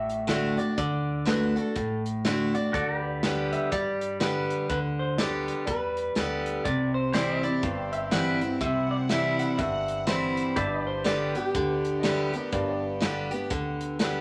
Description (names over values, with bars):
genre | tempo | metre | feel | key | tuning
honky-tonk and classic country | 122 BPM | 4/4 | swing 61% on 8ths | G major | A4 = 440 Hz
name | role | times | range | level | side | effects
electric guitar through a small old amp | melody | 0.0-14.0 s | G4 to F#5 | -34 LUFS | equal | none
picked steel-string acoustic guitar | accompaniment | 0.0-14.2 s | G2 to G4 | -30 LUFS | equal | none
pedal steel guitar | sustained chords | 0.0-14.2 s | F#4 to E5 | -38 LUFS | equal | none
upright bass | bass | 0.0-14.2 s | G1 to G2 | -40 LUFS | equal | none
natural country drum kit | drums | 0.1-14.1 s | hi-hat, kick drum, snare drum | -34 LUFS | equal | none
warm symphonic violin section | sustained chords | 6.7-14.2 s | B3 to F#5 | -41 LUFS | equal | none
clear upright piano | second line | 12.0-13.6 s | Bb4 to E5 | -39 LUFS | equal | none
room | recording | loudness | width
moderate club reverb, RT60 0.7 s | none | -27 LUFS | mono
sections
0.0-14.2 A section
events
none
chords
0.0 D; 2.7 G/D; 6.7 C; 10.6 G